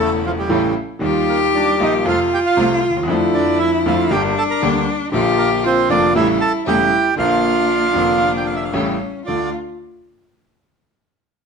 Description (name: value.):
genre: tango.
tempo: 117 BPM.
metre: 4/4.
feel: rubato.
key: D minor.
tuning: A4 = 442 Hz.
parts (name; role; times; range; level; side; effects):
bandoneon; melody; 0.0-9.5 s; F3 to Bb5; -19 LUFS; right 5 dB; none.
clear cello; second line; 0.0-9.5 s; C#4 to A4; -19 LUFS; left 2 dB; none.
bright grand piano; accompaniment; 0.0-9.5 s; E1 to G4; -20 LUFS; equal; none.
rich studio string section; stabs; 0.0-9.5 s; F2 to G4; -26 LUFS; left 2 dB; none.
room: wet studio reverb, RT60 0.8 s.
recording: dark, warm production.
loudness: -14 LUFS.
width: side -5 dB against mid.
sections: 0.0-9.3 A section; 9.3-11.3 B section.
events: none.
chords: 0.0 A; 1.0 Ebadd9; 2.1 F; 3.1 Dm/F; 4.1 Gm; 5.1 Bb; 6.2 A7; 7.2 Bb; 8.7 A7; 9.3 Dm.